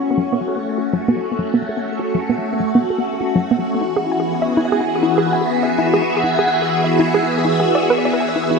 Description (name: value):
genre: ambient, sequencer-driven space music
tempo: 99 BPM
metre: 4/4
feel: straight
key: unclear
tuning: A4 = 440 Hz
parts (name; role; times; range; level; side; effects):
- phased string machine; sustained chords; 0.0-8.6 s; E3 to E5; -17 LUFS; equal; ensemble chorus, phaser
- concert harp; arpeggios; 0.0-1.7 s; C#4 to E4; -32 LUFS; left 3 dB; none
- twinkling granular texture; texture; 0.0-8.6 s; G#4 to G#5; -38 LUFS; equal; none
- hollow square pluck; riff; 0.2-8.6 s; F#3 to G#5; -20 LUFS; right 1 dB; chorus, ping-pong delay
room: moderate plate reverb, RT60 3.5 s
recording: none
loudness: -15 LUFS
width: side -4 dB against mid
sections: 0.0-8.6 A section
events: filter sweep on synth arpeggio sound 0.0-8.6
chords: 0.0 F#m; 3.8 Eadd9